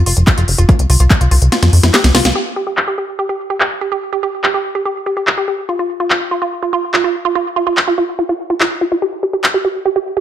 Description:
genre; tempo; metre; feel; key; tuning
psychedelic trance; 144 BPM; 4/4; straight; unclear; A4 = 441 Hz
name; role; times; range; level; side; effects
plucky analog bass; bass; 0.0-2.3 s; F1 to F2; -11 LUFS; equal; none
woody wave-folded pluck; riff; 0.1-10.2 s; E4 to F5; -17 LUFS; moving between left 5 dB and right 7 dB; chorus, auto-pan, sidechain pumping, digital delay
techno drum kit; drums; 0.1-9.5 s; handclaps, hi-hat, snare drum; -15 LUFS; equal; low-pass filter on hats, low-pass filter on snare, low-pass filter on room
electronic kick drum; drums; 0.3-1.2 s; none; -11 LUFS; equal; none
room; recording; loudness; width
light reverb, digital ambience; none; -12 LUFS; side -10 dB against mid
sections
0.0-2.4 A section; 2.4-10.2 B section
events
kick drops out 1.5-2.4; drum fill 1.5-2.4; band accent 2.3; filter sweep on synth arpeggio sound 2.4-10.2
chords
0.0 F5; 2.4 N.C.

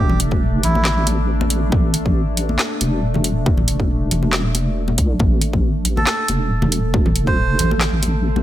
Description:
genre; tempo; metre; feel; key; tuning
deep dubstep; 138 BPM; 4/4; swing 54% on 16ths, half-time; A minor; A4 = 440 Hz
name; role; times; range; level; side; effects
melodica; melody; 0.0-1.1, 6.0-7.7 s; E4 to C5; -24 LUFS; right 2 dB; dub echo
deep dark ambient pad; sustained chords; 0.0-8.4 s; A3 to A4; -26 LUFS; equal; chorus, built-in reverb, vintage 12-bit sampler grit
deep soft wobble bass; bass; 0.0-8.4 s; E1 to C2; -19 LUFS; equal; chorus
congas; percussion; 0.1-8.4 s; none; -25 LUFS; left 2 dB; dub echo
garage drum kit; drums; 0.2-8.1 s; handclaps, hi-hat, snare drum; -21 LUFS; equal; none
electronic kick drum; drums; 0.3-7.4 s; none; -18 LUFS; equal; none
room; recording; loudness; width
little or no reverb; none; -16 LUFS; side -13 dB against mid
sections
0.0-8.4 A section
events
none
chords
0.0 A5

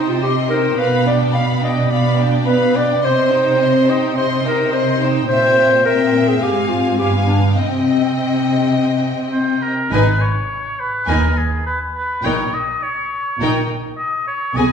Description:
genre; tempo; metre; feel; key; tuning
classical, dramatic, fast romantic movement for symphony orchestra; 104 BPM; 4/4; straight; C minor, G# minor from 9.9 s; A4 = 443 Hz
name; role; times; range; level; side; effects
rich symphonic violin section; melody; 0.0-14.7 s; G5 to C6; -27 LUFS; left 4 dB; none
clear clarinet; second line; 0.0-9.6 s; C4 to F5; -17 LUFS; equal; none
clear studio violin section; second line; 0.0-14.7 s; G#4 to F5; -24 LUFS; left 4 dB; none
clear symphonic viola section; accompaniment; 0.0-14.7 s; B3 to Eb4; -21 LUFS; left 1 dB; none
warm symphonic cello section; bass; 0.0-14.7 s; D#2 to C3; -20 LUFS; right 2 dB; none
clear oboe; second line; 9.3-14.7 s; G#4 to D#5; -20 LUFS; left 1 dB; none
clear symphonic double bass section; bass; 9.9-14.7 s; G#1 to D#2; -21 LUFS; right 2 dB; none
room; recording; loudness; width
wet recital hall reverb, RT60 1.5 s; heard from further back in the room, lossy compression artefacts; -14 LUFS; side -7 dB against mid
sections
0.0-9.9 A section; 9.9-14.7 B section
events
none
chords
0.0 Cm; 0.8 G7/B; 3.0 Cm; 5.3 C7/Bb; 6.4 Fm/Ab; 7.0 G7b9; 7.6 Cm; 9.9 G#m; 12.2 D#7/A#

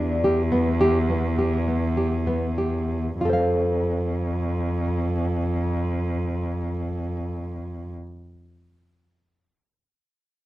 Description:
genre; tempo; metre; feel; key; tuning
contemporary instrumental, contemporary; 93-110 BPM; 7/4; straight; F lydian; A4 = 440 Hz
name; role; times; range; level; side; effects
nylon-string guitar; arpeggios; 0.0-8.1 s; B3 to F5; -24 LUFS; equal; none
dark cello; bass; 0.0-7.9 s; E2 to F2; -24 LUFS; equal; none
room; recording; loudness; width
little or no reverb; close, detailed microphones; -22 LUFS; side -15 dB against mid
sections
0.0-3.2 A section; 3.2-7.6 B section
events
slowing down 0.0-3.2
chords
0.0 Em; 3.2 F

